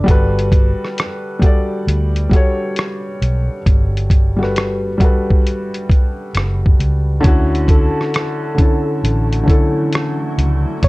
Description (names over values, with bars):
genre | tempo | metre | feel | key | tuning
lo-fi hip hop | 67 BPM | 4/4 | swing 66% on 16ths | unclear | A4 = 440 Hz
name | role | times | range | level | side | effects
soft struck synth lead | melody | 0.0, 7.7-10.9 s | A4 to C#5 | -25 LUFS | equal | chorus, low-pass filter, tape echo
felt-muted upright piano | accompaniment | 0.0-10.9 s | D3 to D5 | -19 LUFS | left 1 dB | cassette tape, low-pass filter
vintage muted fingered electric bass | bass | 0.0-10.9 s | F#1 to D2 | -17 LUFS | equal | none
lo-fi sampler-style drum kit | drums | 0.1-10.9 s | hi-hat, kick drum, rim click | -13 LUFS | equal | none
granular cloud pad | sustained chords | 8.5-10.9 s | E3 to E4 | -29 LUFS | right 1 dB | built-in reverb, low-pass filter
room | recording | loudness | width
little or no reverb | dark, warm production | -13 LUFS | side -22 dB against mid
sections
0.0-10.9 A section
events
none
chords
0.1 Gmaj9; 7.2 Dmaj9